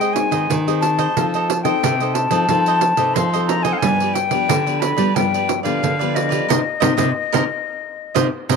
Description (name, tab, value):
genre	samba and choro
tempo	90 BPM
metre	4/4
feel	straight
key	C minor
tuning	A4 = 437 Hz
part	silver concert flute	melody	0.0-8.6 s	Eb5 to C6	-20 LUFS	left 4 dB	none
part	cavaquinho	accompaniment	0.0-8.6 s	F4 to Eb5	-25 LUFS	right 12 dB	none
part	nylon-string guitar	accompaniment	0.0-8.6 s	G2 to A4	-24 LUFS	left 13 dB	none
part	nylon-string guitar	bass	0.0-8.6 s	C3 to Ab3	-23 LUFS	right 1 dB	none
part	pandeiro	percussion	0.0-8.6 s	none	-22 LUFS	right 12 dB	none
room	wet spring reverb, RT60 2.1 s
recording	1960s-style stereo with parts hard left and right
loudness	-16 LUFS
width	side -5 dB against mid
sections	0.0-8.6 A section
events	band accent 6.5-8.6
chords	0.0 Ab; 1.2 F7; 3.8 G7; 6.5 Cm7